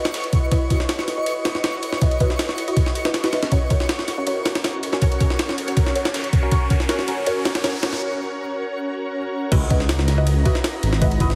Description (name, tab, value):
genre	drum and bass, jungle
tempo	160 BPM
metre	4/4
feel	straight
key	C# dorian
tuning	A4 = 443 Hz
part	ethereal airy pad	sustained chords	0.0-11.4 s	C#4 to D#5	-31 LUFS	equal	ensemble chorus, built-in reverb
part	twinkling granular texture	texture	0.0-11.4 s	A#5 to C#6	-36 LUFS	equal	built-in reverb
part	breakbeat sampler-style drum kit	drums	0.1-8.0 s	hi-hat, snare drum	-37 LUFS	equal	none
part	jungle sampler-style drum kit	drums	0.1-11.4 s	crash cymbal, kick drum, ride cymbal, snare drum	-23 LUFS	equal	none
part	filtered dub chord stab	stabs	0.5-11.3 s	C#4 to D#5	-29 LUFS	equal	phaser, subtle chorus, dub echo
part	riser	sound effects	4.8-8.0 s	none	-37 LUFS	equal	none
part	dark detuned saw bass	bass	9.5-11.4 s	G#1 to C#2	-21 LUFS	equal	none
room	light reverb, digital ambience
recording	heavily compressed radio sound, multiband compression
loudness	-21 LUFS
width	mono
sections	0.0-9.5 A section; 9.5-11.4 B section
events	build-up 0.0-9.5; filter sweep on ambient pad 0.0-9.5; filter sweep on synth stab 0.0-9.5; riser 4.8-8.0; break 8.0-9.5; drop 9.5-11.4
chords	0.0 C#m11; 3.5 F#/C#; 9.5 C#m11